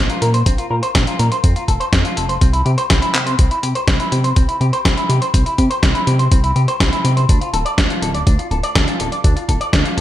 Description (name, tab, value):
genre	italo disco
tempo	123 BPM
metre	4/4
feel	straight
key	unclear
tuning	A4 = 440 Hz
part	electric guitar with an envelope filter	arpeggios	0.0-10.0 s	C4 to D5	-21 LUFS	left 1 dB	spring reverb, ping-pong delay
part	chorused synth bass	bass	0.0-10.0 s	D1 to C3	-18 LUFS	equal	none
part	dusty soul sampler-style drum kit	drums	0.1-10.0 s	handclaps, hi-hat, snare drum	-20 LUFS	equal	studio reverb, gated reverb
part	electronic kick drum	drums	0.5-9.8 s	none	-15 LUFS	equal	studio reverb
room	light reverb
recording	none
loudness	-13 LUFS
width	side -13 dB against mid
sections	0.0-3.4 A section; 3.4-10.0 B section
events	drum fill 3.1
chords	0.0 Bbsus2; 1.4 F; 2.4 C; 7.3 Dm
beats	0.46 0.95 | 1.44 1.93 2.41 2.90 | 3.39 3.88 4.36 4.85 | 5.34 5.83 6.32 6.80 | 7.29 7.78 8.27 8.75 | 9.24 9.73